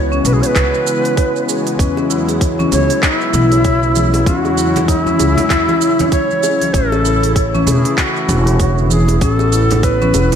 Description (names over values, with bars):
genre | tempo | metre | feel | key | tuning
organic downtempo | 97 BPM | 4/4 | swing 59% on 16ths | unclear | A4 = 440 Hz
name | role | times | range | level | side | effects
warm analog pad | sustained chords | 0.0-10.4 s | C#3 to F#4 | -21 LUFS | equal | chorus, sidechain pumping
marimba with medium mallets | arpeggios | 0.0-10.4 s | C#4 to C#5 | -20 LUFS | left 3 dB | analog delay
upright bass | bass | 0.0-10.3 s | E1 to E2 | -16 LUFS | equal | sidechain pumping
organic electronic drum kit | drums | 0.1-10.4 s | handclaps, hi-hat, shaker | -22 LUFS | right 3 dB | none
breathy low Native American-style wooden flute | melody | 0.3-10.4 s | E4 to C#5 | -17 LUFS | equal | ping-pong delay
electronic kick drum | drums | 0.6-10.0 s | none | -17 LUFS | equal | none
bongos and congas | percussion | 2.0-10.4 s | none | -23 LUFS | right 3 dB | none
room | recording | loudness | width
moderate lush hall reverb, RT60 1.7 s, studio reverb | dreamy mix soaked in reverb | -12 LUFS | side -8 dB against mid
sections
0.0-10.4 A section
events
none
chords
0.0 C#m7; 6.7 A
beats
0.56 1.18 | 1.79 2.41 3.03 3.65 | 4.27 4.89 5.50 6.12 | 6.74 7.36 7.98 8.60 | 9.22 9.84